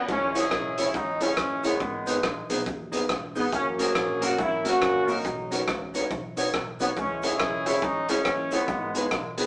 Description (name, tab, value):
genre	ska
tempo	140 BPM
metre	4/4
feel	swing 62% on 8ths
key	unclear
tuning	A4 = 439 Hz
part	warm horn section	melody	0.1-9.3 s	D#3 to G#4	-26 LUFS	equal	none
part	upright bass	bass	0.1-9.5 s	E1 to D#2	-40 LUFS	equal	none
part	raw garage drum kit	drums	0.1-9.5 s	hi-hat, kick drum, rim click	-29 LUFS	equal	tape echo
part	cabasa	percussion	0.1-9.5 s	none	-51 LUFS	left 1 dB	none
part	dark upright piano	stabs	0.3-9.5 s	A#3 to C#5	-32 LUFS	equal	none
part	clean electric guitar	accompaniment	0.4-9.5 s	C#4 to C#5	-32 LUFS	equal	tape echo
room	wet studio reverb, RT60 0.9 s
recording	band playing live in one room, small speaker sound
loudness	-23 LUFS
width	side -24 dB against mid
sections	0.1-9.5 A section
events	none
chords	0.1 C#m; 1.8 G#m; 3.5 F#; 5.2 Badd9; 7.0 C#m; 8.7 G#m